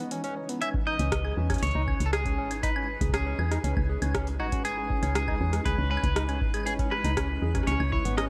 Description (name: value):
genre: IDM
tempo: 119 BPM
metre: 4/4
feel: straight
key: C# minor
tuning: A4 = 440 Hz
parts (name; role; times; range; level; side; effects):
- granular cloud pad; sustained chords; 0.0-8.3 s; E3 to B4; -40 LUFS; equal; built-in reverb, shimmer reverb
- overdriven tine electric piano; arpeggios; 0.0-8.3 s; B3 to C#5; -37 LUFS; equal; vintage 12-bit sampler grit, tape echo, shimmer reverb
- bubbling stepped-filter texture; texture; 0.0-0.6 s; D#4 to D#5; -52 LUFS; equal; none
- electro analog drum machine; drums; 0.1-8.3 s; hi-hat, rim click, woodblock; -37 LUFS; equal; overdrive
- clean electric guitar; melody; 0.6-8.2 s; F#4 to E5; -35 LUFS; equal; vintage 12-bit sampler grit, digital delay, shimmer reverb
- electronic kick drum; drums; 0.7-8.0 s; none; -34 LUFS; equal; overdrive
- woody FM bass; bass; 1.0-8.3 s; G#1 to E2; -31 LUFS; equal; none
room: digital ambience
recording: none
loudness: -28 LUFS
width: mono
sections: 0.6-8.3 A section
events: none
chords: 0.0 C#m9